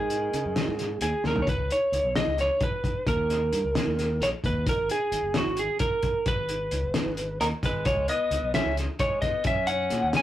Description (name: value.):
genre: progressive instrumental, band music in an uneven meter.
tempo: 263 BPM (eighths).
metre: 7/8.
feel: straight.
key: G# minor.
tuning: A4 = 438 Hz.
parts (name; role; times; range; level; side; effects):
lightly driven lead guitar; melody; 0.0-10.2 s; F#4 to G#5; -26 LUFS; right 1 dB; none.
clear alto saxophone; second line; 0.0-1.0, 7.4-10.2 s; D#3 to C#4; -34 LUFS; left 2 dB; none.
modern bright fingered electric bass; bass; 0.0-10.1 s; F#1 to C#3; -31 LUFS; equal; none.
cloth-damped thuddy drum kit; drums; 0.1-10.2 s; hi-hat, kick drum, snare drum, toms; -29 LUFS; equal; none.
room: wet small room ambience, RT60 0.5 s.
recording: rough rehearsal-room recording, warm saturation.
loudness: -24 LUFS.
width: side -13 dB against mid.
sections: 0.0-1.5 A section; 1.5-10.2 A section.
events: drum fill 1.2.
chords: 0.0 G#5; 1.5 Bsus2; 3.1 D#5; 4.7 G#madd9; 7.9 B69; 9.5 F#.